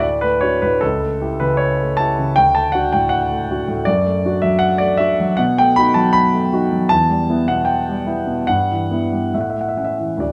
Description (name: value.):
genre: classical, romantic character piece for solo piano.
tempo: 64-81 BPM.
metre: 2/4.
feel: rubato.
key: D major.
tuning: A4 = 440 Hz.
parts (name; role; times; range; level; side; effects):
warm grand piano; solo; 0.0-10.3 s; C#2 to B5; -17 LUFS; equal; none.
room: moderate large studio reverb, RT60 1.0 s.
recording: dark, warm production.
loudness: -17 LUFS.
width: mono.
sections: 0.0-10.3 A section.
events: none.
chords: 0.0 D; 0.8 A7/C#; 2.4 D; 3.9 D/F#; 5.4 B7; 6.9 Em; 8.5 Em/G; 9.3 A.